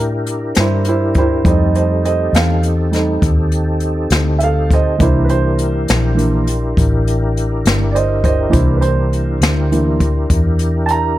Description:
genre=slow blues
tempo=68 BPM (dotted quarters)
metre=12/8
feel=straight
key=C mixolydian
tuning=A4 = 440 Hz
part: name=mellow tonewheel organ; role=sustained chords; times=0.0-11.2 s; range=C4 to Bb4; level=-21 LUFS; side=left 1 dB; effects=chorus vibrato, slow rotary speaker
part: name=vintage muted fingered electric bass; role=bass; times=0.0-11.2 s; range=G1 to A2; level=-16 LUFS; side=equal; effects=none
part: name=jazz brush drum kit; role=drums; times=0.3-11.0 s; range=hi-hat, kick drum, snare drum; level=-17 LUFS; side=left 1 dB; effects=none
part: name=warm upright piano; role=accompaniment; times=0.6-11.2 s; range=E3 to Bb5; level=-18 LUFS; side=right 4 dB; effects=none
room=little or no reverb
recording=none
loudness=-12 LUFS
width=side -15 dB against mid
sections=0.0-11.2 A section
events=upright piano solo 0.0-11.2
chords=0.0 C7; 1.5 F7; 5.0 C7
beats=0.57 | 1.46 2.34 3.23 4.11 | 5.00 5.88 6.77 7.66 | 8.54 9.43 10.32

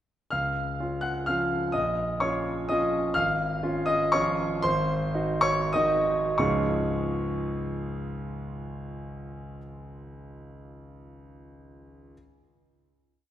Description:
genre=classical, piano waltz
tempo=89-132 BPM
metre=3/4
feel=rubato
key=Db major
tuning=A4 = 440 Hz
part: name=clear concert grand piano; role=solo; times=0.3-12.1 s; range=Ab1 to Gb6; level=-25 LUFS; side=equal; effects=none
room=wet concert hall reverb, RT60 2.3 s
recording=recorded in a church or concert hall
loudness=-24 LUFS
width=side -11 dB against mid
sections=0.3-6.4 A section; 6.4-10.0 final chord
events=slowing down 2.5-6.4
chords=0.3 Db; 1.8 Bbm; 3.2 Db/Ab; 4.6 Ab7; 6.4 Db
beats=| 0.34 0.81 1.29 | 1.75 2.22 2.70 | 3.17 3.63 4.13 | 4.63 5.14 5.74 | 6.38 6.99 7.61 | 8.22 8.82 9.44

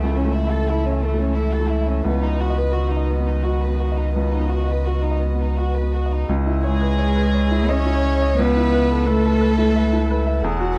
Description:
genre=neoclassical piano and strings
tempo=87 BPM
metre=3/4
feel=uneven beats, rubato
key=unclear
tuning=A4 = 436 Hz
part: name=warm chamber violin section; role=melody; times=0.0-10.8 s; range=A3 to C#5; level=-28 LUFS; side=equal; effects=none
part: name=dark cello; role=second line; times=0.0-10.8 s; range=D#3 to C#4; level=-27 LUFS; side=equal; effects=none
part: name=clear baby grand piano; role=accompaniment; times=0.0-10.8 s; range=C#2 to E5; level=-26 LUFS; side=equal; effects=none
part: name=warm chamber string section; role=sustained chords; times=0.0-10.8 s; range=E4 to F#5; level=-36 LUFS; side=equal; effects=none
part: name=pure sine sub bass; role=bass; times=0.0-10.8 s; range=E1 to C#2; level=-23 LUFS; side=equal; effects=none
room=light reverb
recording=none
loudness=-20 LUFS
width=mono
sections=0.0-6.3 A section; 6.3-10.8 B section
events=none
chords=0.0 A/C#; 2.1 B/C#; 6.3 C#madd9; 8.4 Aadd9/C#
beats=| 0.02 0.70 1.38 | 2.05 2.74 3.44 | 4.15 4.87 5.58 | 6.29 6.99 7.70 | 8.39 9.06 9.74 | 10.41

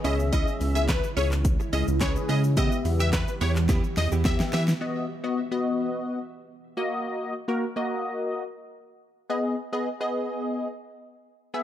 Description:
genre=dance-pop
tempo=107 BPM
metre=4/4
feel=straight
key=B major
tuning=A4 = 441 Hz
part: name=plucky unison lead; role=melody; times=0.0-4.6 s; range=B4 to E5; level=-32 LUFS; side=left 2 dB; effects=phaser, tape echo
part: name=funky polysynth comp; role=accompaniment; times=0.0-11.6 s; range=A#3 to E5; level=-28 LUFS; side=left 2 dB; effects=chorus, sidechain pumping
part: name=ethereal airy pad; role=sustained chords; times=0.0-4.8 s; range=C#3 to G4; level=-34 LUFS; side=right 2 dB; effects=ensemble chorus, built-in reverb, sidechain pumping
part: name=direct-recorded clean electric guitar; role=riff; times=0.0-4.7 s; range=B3 to G#4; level=-34 LUFS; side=right 5 dB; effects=ensemble chorus
part: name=round analog bass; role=bass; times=0.0-4.7 s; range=C#2 to E3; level=-25 LUFS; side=equal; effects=sidechain pumping
part: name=pop drum kit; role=drums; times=0.0-4.8 s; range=handclaps, hi-hat, kick drum, shaker, snare drum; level=-27 LUFS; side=equal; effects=none
room=light reverb, digital ambience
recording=none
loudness=-24 LUFS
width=side -11 dB against mid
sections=0.0-4.8 A section; 4.8-11.6 B section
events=drum fill 3.7-4.8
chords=0.0 C#m; 2.6 Em; 4.8 B; 6.8 D#m; 9.3 G#m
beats=| 0.33 0.89 1.45 2.01 | 2.57 3.13 3.69 4.25 | 4.81 5.38 5.94 6.50 | 7.06 7.62 8.18 8.74 | 9.30 9.86 10.42 10.98 | 11.54

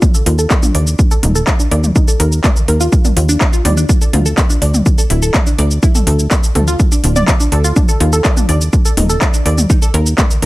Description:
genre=melodic techno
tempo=124 BPM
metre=4/4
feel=straight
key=unclear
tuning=A4 = 441 Hz
part: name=wide unison pluck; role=arpeggios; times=0.0-10.5 s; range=D4 to D5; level=-20 LUFS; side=right 1 dB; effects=sidechain pumping, digital delay
part: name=electronic kick drum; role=drums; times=0.0-10.3 s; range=none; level=-12 LUFS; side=equal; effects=overdrive
part: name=techno drum kit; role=drums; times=0.0-10.5 s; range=handclaps, hi-hat, shaker, toms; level=-18 LUFS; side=equal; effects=overdrive, sidechain pumping on perc, sidechain pumping on hats, sidechain pumping on toms
part: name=tight sequencer bass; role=bass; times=0.3-10.5 s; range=D1 to Eb2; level=-13 LUFS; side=equal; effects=sidechain pumping
room=digital ambience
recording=none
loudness=-10 LUFS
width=side -18 dB against mid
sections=0.0-10.5 A section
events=filter sweep on synth pluck 0.0-10.5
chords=0.0 N.C.; 3.9 D5; 7.8 N.C.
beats=| 0.02 0.51 0.99 1.47 | 1.96 2.44 2.92 3.41 | 3.89 4.38 4.86 5.34 | 5.83 6.31 6.79 7.28 | 7.76 8.25 8.73 9.21 | 9.70 10.18

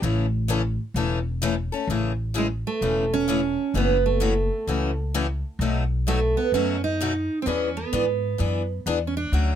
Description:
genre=acoustic string swing (jazz manouche)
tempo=129 BPM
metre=4/4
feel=swing 64% on 8ths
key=A major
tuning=A4 = 443 Hz
part: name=picked steel-string acoustic guitar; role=accompaniment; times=0.0-9.6 s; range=B2 to A4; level=-26 LUFS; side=left 6 dB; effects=none
part: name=upright bass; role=bass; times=0.0-9.6 s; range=E1 to G#2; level=-25 LUFS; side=equal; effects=none
part: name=picked steel-string acoustic guitar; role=melody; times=2.4-9.6 s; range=G#3 to D#4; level=-24 LUFS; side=right 5 dB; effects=none
room=little or no reverb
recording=close, detailed microphones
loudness=-22 LUFS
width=side -10 dB against mid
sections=0.0-1.9 A section; 1.9-9.6 B section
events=none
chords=0.0 A; 1.9 Amaj7; 3.7 F#m7; 5.6 B7; 7.5 E7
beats=| 0.02 0.49 0.95 1.42 | 1.88 2.34 2.81 3.27 | 3.74 4.20 4.67 5.13 | 5.60 6.06 6.53 6.99 | 7.46 7.92 8.39 8.85 | 9.32

